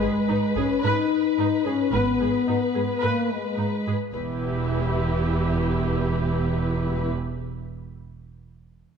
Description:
cinematic, epic orchestral film score; 109 BPM; 4/4; straight; A4 = 439 Hz
dark studio violin section; second line; 0.0-7.1 s; B4; -31 LUFS; left 7 dB
warm symphonic viola section; accompaniment; 0.0-7.1 s; D#4 to B4; -30 LUFS; right 2 dB
mellow French horn section; sustained chords; 0.0-7.1 s; E3 to D#4; -25 LUFS; left 4 dB
warm symphonic cello section; bass; 0.0-7.1 s; E2 to G#2; -29 LUFS; right 4 dB
taiko ensemble; drums; 0.6-0.8 s; -38 LUFS; equal
rich symphonic double bass section; bass; 1.9-7.1 s; E1 to G#1; -29 LUFS; right 4 dB
moderate concert hall reverb, RT60 2.1 s; dark, warm production; -22 LUFS; side -6 dB against mid
0.0-4.1 A section; 4.1-6.3 B section
0.0 G#m; 4.1 Em
0.29 0.83 1.38 | 1.93 2.48 3.03 3.59 | 4.14 4.69 5.25 5.79

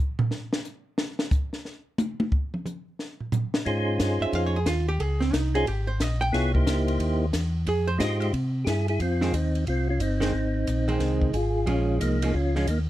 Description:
soul jazz organ trio; 180 BPM; 4/4; swing 64% on 8ths; F minor; A4 = 440 Hz
compact cocktail drum kit; drums; 0.2-12.8 s; hi-hat, kick drum, ride cymbal, snare drum, toms; -28 LUFS; equal
percussive tonewheel organ; melody; 3.7-12.8 s; Ab3 to Db5; -27 LUFS; equal; slow rotary speaker
mellow tonewheel organ; bass; 3.7-12.9 s; G1 to C3; -26 LUFS; equal; slow rotary speaker
archtop guitar, miked and amplified; accompaniment; 4.2-12.7 s; Eb3 to G5; -29 LUFS; right 3 dB
light reverb; -23 LUFS; side -14 dB against mid
0.0-9.0 A section; 9.0-12.9 B section
hollow-body jazz guitar solo 0.0-9.0; drum solo 0.0-3.7; band accent 10.2
0.0 N.C.; 3.7 Dbmaj7; 6.3 C7#9; 7.7 Fm7; 8.3 C; 9.0 Fm7; 11.7 Bbm7
0.31 0.65 | 0.98 1.31 1.65 1.99 | 2.32 2.65 2.99 3.32 | 3.66 3.99 4.33 4.66 | 5.00 5.33 5.66 6.00 | 6.33 6.66 7.00 7.33 | 7.66 8.00 8.33 8.66 | 9.00 9.33 9.66 10.00 | 10.33 10.67 11.00 11.33 | 11.67 12.00 12.34 12.67

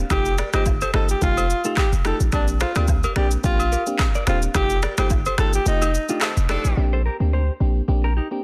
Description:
afrobeats; 108 BPM; 4/4; swing 55% on 16ths; Bb major; A4 = 440 Hz
mellow FM electric piano; accompaniment; 0.0-8.4 s; A3 to G4; -31 LUFS; equal; chorus
warm 808-style bass; bass; 0.0-8.2 s; Eb1 to D2; -23 LUFS; equal
breathy alto saxophone; melody; 0.1-6.1 s; D4 to A4; -28 LUFS; equal; digital delay
afro-pop drum kit; drums; 0.1-6.8 s; finger snaps, handclaps, kick drum, rim click, shaker; -26 LUFS; equal
agogo bells and woodblock; percussion; 0.1-6.4 s; -32 LUFS; equal
mellow electric guitar; riff; 0.4-8.3 s; D4 to Eb5; -33 LUFS; equal; vibrato effect, digital delay
warm horn section; second line; 6.2-6.9 s; Eb3 to A4; -31 LUFS; equal
studio reverb; dense, heavily limited modern master; -21 LUFS; mono
0.0-6.8 A section; 6.8-8.4 B section
band accent 4.5-6.8; kick muted 5.7-6.8
0.1 F9; 2.3 Bb69; 4.5 F9; 6.8 Bb69
| 0.10 0.66 1.22 1.77 | 2.33 2.88 3.44 3.99 | 4.55 5.11 5.66 6.22 | 6.77 7.33 7.88 8.44

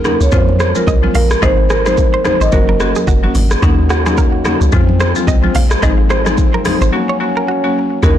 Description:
afrobeats; 109 BPM; 4/4; swing 58% on 16ths; A4 = 440 Hz
buzzing marimba with hard mallets; accompaniment; 0.0-8.2 s; F3 to Gb4; -18 LUFS; left 4 dB
deep log drum bass; bass; 0.0-8.2 s; Gb1 to F2; -15 LUFS; equal
afro-pop drum kit; drums; 0.0-8.2 s; hi-hat, kick drum, rim click, shaker; -15 LUFS; equal; soft clipping on snare
marimba with medium mallets; melody; 0.1-2.9, 8.0-8.2 s; Bb4 to Eb5; -17 LUFS; right 3 dB; digital delay
congas; percussion; 0.1-8.2 s; -24 LUFS; right 3 dB
direct-recorded clean electric guitar; riff; 0.6-7.7 s; Gb4 to F5; -23 LUFS; right 6 dB; digital delay
mellow French horn section; sustained chords; 3.6-8.2 s; Eb3 to Gb4; -22 LUFS; left 2 dB; stereo widening
studio reverb; blown-out, overdriven recording, overdrive; -10 LUFS; side -11 dB against mid
0.0-8.0 A section
break 6.9-8.0
0.3 Fm; 1.4 Ab6; 2.5 Gb; 3.6 Ebm7; 4.7 Fm; 5.8 Ab6; 6.9 Gb
0.32 0.87 | 1.42 1.98 2.52 3.08 | 3.63 4.18 4.73 5.28 | 5.83 6.38 6.93 7.48 | 8.03

